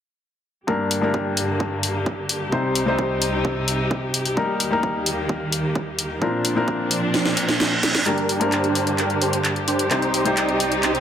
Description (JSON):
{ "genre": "EDM, festival progressive house", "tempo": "130 BPM", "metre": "4/4", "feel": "straight", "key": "unclear", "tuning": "A4 = 440 Hz", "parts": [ { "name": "felt-muted upright piano", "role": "accompaniment", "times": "0.7-11.0 s", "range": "G2 to C5", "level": "-23 LUFS", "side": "left 2 dB", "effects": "sidechain pumping, dub echo" }, { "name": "rich chamber string section", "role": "sustained chords", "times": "0.7-11.0 s", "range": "C2 to G4", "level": "-26 LUFS", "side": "right 1 dB", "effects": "sidechain pumping, low-pass filter" }, { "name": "electronic kick drum", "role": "drums", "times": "0.7-6.8 s", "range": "none", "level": "-26 LUFS", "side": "right 1 dB", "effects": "high-pass filter on kick, high-pass filter on room" }, { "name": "house drum kit", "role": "drums", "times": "0.9-11.0 s", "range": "handclaps, hi-hat, snare drum", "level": "-23 LUFS", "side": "equal", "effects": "none" }, { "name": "reverse cymbal and riser", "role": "sound effects", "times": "7.3-11.0 s", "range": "none", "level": "-28 LUFS", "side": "right 3 dB", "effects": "none" }, { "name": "supersaw chords", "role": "riff", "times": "8.1-11.0 s", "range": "D4 to D5", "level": "-23 LUFS", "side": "right 3 dB", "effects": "sidechain pumping, low-pass filter, dub echo" } ], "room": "moderate lush hall reverb, RT60 2.3 s", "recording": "none", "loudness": "-19 LUFS", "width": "side -9 dB against mid", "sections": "0.7-8.1 A section; 8.1-11.0 B section", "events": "kick drops out 7.1-8.1; drum fill 7.1-8.1, 8.1-11.0; reverse cymbal 7.3-8.1; build-up 8.1-11.0; filter sweep on supersaw synth 8.1-11.0", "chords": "0.7 Gm; 2.5 Cm; 4.4 Eb; 6.2 Bbadd9; 8.1 Gm; 9.9 Cm", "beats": "| 0.68 1.14 1.60 2.06 | 2.52 2.99 3.45 3.91 | 4.37 4.83 5.29 5.75 | 6.22 6.68 7.14 7.60 | 8.06 8.52 8.99 9.45 | 9.91 10.37 10.83" }